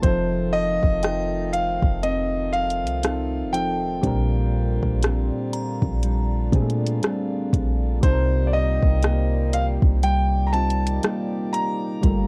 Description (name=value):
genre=contemporary R&B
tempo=60 BPM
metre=4/4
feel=swing 58% on 16ths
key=C dorian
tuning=A4 = 441 Hz
part: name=clear concert grand piano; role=melody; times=0.0-12.3 s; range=C5 to Bb5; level=-28 LUFS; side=equal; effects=cassette tape
part: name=soft electric-piano-like synth keys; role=accompaniment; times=0.0-12.3 s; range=F3 to Bb4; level=-33 LUFS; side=equal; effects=chorus, cassette tape
part: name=pedal harmonium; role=sustained chords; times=0.0-12.3 s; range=Bb2 to D5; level=-36 LUFS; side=equal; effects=cassette tape
part: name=mellow electric guitar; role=arpeggios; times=0.0-12.3 s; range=Bb2 to A4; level=-31 LUFS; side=equal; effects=cassette tape
part: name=clean 808-style bass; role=bass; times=0.0-12.3 s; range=F1 to Bb2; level=-26 LUFS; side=equal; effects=none
part: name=smooth R&B drum kit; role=drums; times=0.0-12.3 s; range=hi-hat, kick drum, rim click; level=-24 LUFS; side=equal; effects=cassette tape
part: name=glassy synth bell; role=texture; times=1.0-8.0 s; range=G5 to Bb5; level=-42 LUFS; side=equal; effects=chorus, cassette tape, tape echo
room=little or no reverb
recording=home recording on cassette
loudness=-22 LUFS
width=mono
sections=0.0-12.3 A section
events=none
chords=0.0 F7; 4.0 Bb69; 8.0 Cm7